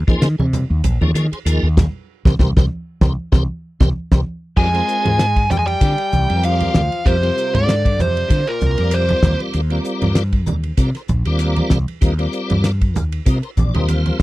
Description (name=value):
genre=electric jazz fusion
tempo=96 BPM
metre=4/4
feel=swing 55% on 16ths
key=F dorian from 4.6 s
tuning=A4 = 440 Hz
part: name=mellow fretless electric bass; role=bass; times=0.0-14.2 s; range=Bb1 to Eb3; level=-18 LUFS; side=equal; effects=none
part: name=tonewheel organ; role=accompaniment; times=0.1-14.2 s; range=F3 to F5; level=-24 LUFS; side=left 1 dB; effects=chorus vibrato, slow rotary speaker
part: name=damped 70s drum kit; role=drums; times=0.1-14.2 s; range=crash cymbal, hi-hat, kick drum, ride cymbal, snare drum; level=-17 LUFS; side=equal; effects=none
part: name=congas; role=percussion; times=0.1-14.2 s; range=none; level=-22 LUFS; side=right 2 dB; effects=none
part: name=bluesy overdriven lead guitar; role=melody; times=4.6-9.4 s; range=Bb4 to Ab5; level=-20 LUFS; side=right 2 dB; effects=distortion
part: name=mellow tenor saxophone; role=second line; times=4.6-9.4 s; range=Bb2 to Ab3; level=-27 LUFS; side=left 9 dB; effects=none
room=little or no reverb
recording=dry, close 1970s-style studio recording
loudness=-15 LUFS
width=side -18 dB against mid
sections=0.0-4.6 A section; 4.6-14.2 B section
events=band accent 2.1-4.6; drum fill 3.3-4.6, 13.9-14.2; tonewheel organ fill 13.3-14.2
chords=0.0 Eb9sus4; 2.1 C5; 4.6 Fm69; 9.2 Eb69